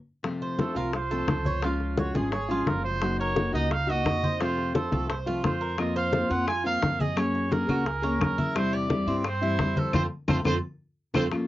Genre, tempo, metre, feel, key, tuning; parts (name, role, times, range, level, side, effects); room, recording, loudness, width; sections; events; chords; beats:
latin, Cuban son and guajira; 173 BPM; 4/4; straight; A4 = 440 Hz
nylon-string guitar; accompaniment; 0.2-11.5 s; C3 to Ab4; -29 LUFS; left 2 dB; cassette tape
bongos; percussion; 0.2-11.5 s; -32 LUFS; left 4 dB
congas; percussion; 0.2-11.5 s; -30 LUFS; left 1 dB
Cuban tres; arpeggios; 0.4-11.3 s; C4 to Db5; -33 LUFS; right 3 dB; cassette tape
warm trumpet; melody; 0.6-11.2 s; F4 to Ab5; -30 LUFS; right 3 dB; cassette tape
upright bass; bass; 0.8-11.3 s; Gb1 to G2; -33 LUFS; equal
claves; percussion; 5.8-11.5 s; -37 LUFS; left 5 dB
moderate booth ambience, RT60 0.2 s; home recording on cassette, nothing above 7.5 kHz; -24 LUFS; side -15 dB against mid
0.2-11.3 A section
band accent 0.0, 9.9-11.3; drum fill 10.8-11.3
0.2 F; 1.6 Db; 3.0 Gb6; 4.4 F; 5.8 Fsus4; 7.2 Gbadd9; 8.6 C/E; 9.9 F
| 0.24 0.59 0.94 1.28 | 1.63 1.98 2.33 2.67 | 3.02 3.37 3.71 4.06 | 4.41 4.75 5.10 5.45 | 5.79 6.14 6.48 6.83 | 7.18 7.52 7.87 8.21 | 8.56 8.91 9.25 9.60 | 9.94 10.29 10.63 10.98 | 11.33